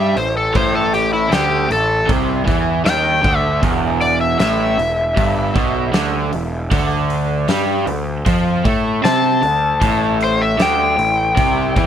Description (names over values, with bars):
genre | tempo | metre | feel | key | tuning
blues rock power trio and southern rock | 78 BPM | 4/4 | straight | unclear | A4 = 439 Hz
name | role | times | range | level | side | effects
overdriven slide guitar | melody | 0.0-11.9 s | E4 to A5 | -18 LUFS | left 2 dB | none
raw garage guitar | riff | 0.0-11.9 s | E2 to C4 | -19 LUFS | right 2 dB | overdrive
fuzz picked electric bass | bass | 0.0-11.9 s | E1 to C3 | -22 LUFS | equal | overdrive
big rock drum kit | drums | 0.2-11.9 s | hi-hat, kick drum, snare drum | -21 LUFS | equal | none
room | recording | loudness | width
light reverb | none | -14 LUFS | side -9 dB against mid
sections
0.0-11.9 A section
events
none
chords
0.0 A5; 3.6 E5; 6.7 D5; 9.8 A5